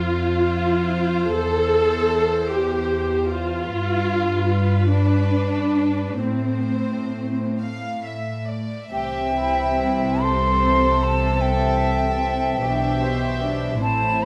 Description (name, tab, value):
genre	cinematic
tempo	44-52 BPM (dotted quarters)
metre	6/8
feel	rubato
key	C major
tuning	A4 = 440 Hz
part	warm symphonic violin section	melody	0.0-14.3 s	B4 to F5	-33 LUFS	equal	none
part	dark symphonic viola section	accompaniment	0.0-14.3 s	C4 to C5	-25 LUFS	equal	none
part	warm symphonic cello section	bass	0.0-14.3 s	E2 to C3	-27 LUFS	equal	none
part	hollow concert flute	second line	8.9-14.3 s	G5 to C6	-25 LUFS	equal	none
part	warm symphonic violin section	second line	8.9-14.3 s	E4 to A4	-32 LUFS	equal	none
part	mellow French horn section	sustained chords	8.9-14.3 s	E3 to C5	-32 LUFS	equal	none
part	dark chamber double bass section	bass	8.9-14.3 s	A1 to C2	-28 LUFS	equal	none
room	moderate scoring stage reverb, RT60 1.5 s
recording	close, detailed microphones, vinyl crackle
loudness	-21 LUFS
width	mono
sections	0.0-8.9 A section; 8.9-14.3 B section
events	none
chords	0.0 F5; 1.3 C/E; 3.7 G7; 6.2 Am; 8.9 C